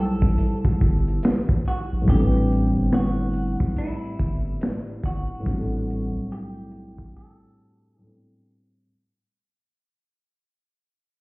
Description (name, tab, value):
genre	lo-fi hip hop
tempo	71 BPM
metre	4/4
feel	swing 60% on 16ths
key	A dorian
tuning	A4 = 438 Hz
part	semi-hollow electric guitar	melody	0.0-8.4 s	E4 to A4	-36 LUFS	equal	low-pass filter, analog delay, plate reverb
part	felt-muted upright piano	accompaniment	0.0-8.9 s	A2 to C5	-26 LUFS	equal	cassette tape, low-pass filter
part	saturated sub bass	bass	0.0-7.1 s	G1 to B1	-25 LUFS	equal	none
part	crunchy breakbeat drum kit	drums	0.2-7.1 s	finger snaps, hi-hat, kick drum, snare drum	-23 LUFS	equal	none
part	tambourine	percussion	1.2-1.5 s	none	-70 LUFS	right 3 dB	none
room	light reverb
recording	heard muffled through a wall, cassette tape, stone room reverb, EQ, low-pass filter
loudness	-20 LUFS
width	side -24 dB against mid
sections	0.0-2.1 A section; 2.1-8.8 B section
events	fade-out 2.1-8.8; filter sweep 2.1-8.8; break 7.2-8.8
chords	0.0 Am7; 2.1 Am11